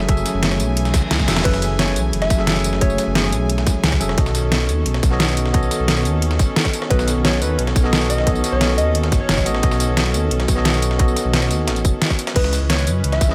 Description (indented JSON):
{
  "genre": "liquid drum and bass",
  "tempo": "176 BPM",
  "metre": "4/4",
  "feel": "straight",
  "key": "unclear",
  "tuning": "A4 = 439 Hz",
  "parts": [
    { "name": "bell-like tine electric piano", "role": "accompaniment", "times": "0.0-13.3 s", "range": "C#3 to E5", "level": "-26 LUFS", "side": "equal", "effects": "tape echo" },
    { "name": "rich chamber string section", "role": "sustained chords", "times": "0.0-13.3 s", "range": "D#3 to G#5", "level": "-30 LUFS", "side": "equal", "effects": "none" },
    { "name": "dark detuned saw bass", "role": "bass", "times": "0.0-13.3 s", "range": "E1 to F#2", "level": "-23 LUFS", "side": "equal", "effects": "none" },
    { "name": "dusty soul sampler-style drum kit", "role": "drums", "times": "0.0-13.3 s", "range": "hi-hat, snare drum", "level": "-30 LUFS", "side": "equal", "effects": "high-pass filter on hats, high-pass filter on snare" },
    { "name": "electronic kick drum", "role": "drums", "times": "0.1-13.3 s", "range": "none", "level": "-20 LUFS", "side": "equal", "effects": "none" },
    { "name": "pop drum kit", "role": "drums", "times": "0.1-13.3 s", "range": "crash cymbal, hi-hat, rim click, snare drum, tambourine", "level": "-24 LUFS", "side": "equal", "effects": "overdrive" },
    { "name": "reverse cymbal", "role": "sound effects", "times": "0.9-1.5 s", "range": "none", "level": "-36 LUFS", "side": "equal", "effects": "none" },
    { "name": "soft struck synth lead", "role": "melody", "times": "1.4-3.5, 6.9-9.5, 12.4-13.3 s", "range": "G#4 to E5", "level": "-28 LUFS", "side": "equal", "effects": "chorus, vintage 12-bit sampler grit, delay" }
  ],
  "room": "little or no reverb",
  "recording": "none",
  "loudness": "-18 LUFS",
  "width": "mono",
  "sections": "0.0-12.4 A section",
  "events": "drop 0.0-12.4; reverse cymbal 0.9-1.5; drum fill 1.2",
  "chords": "0.0 F#m9; 4.2 B9; 12.4 C#m7"
}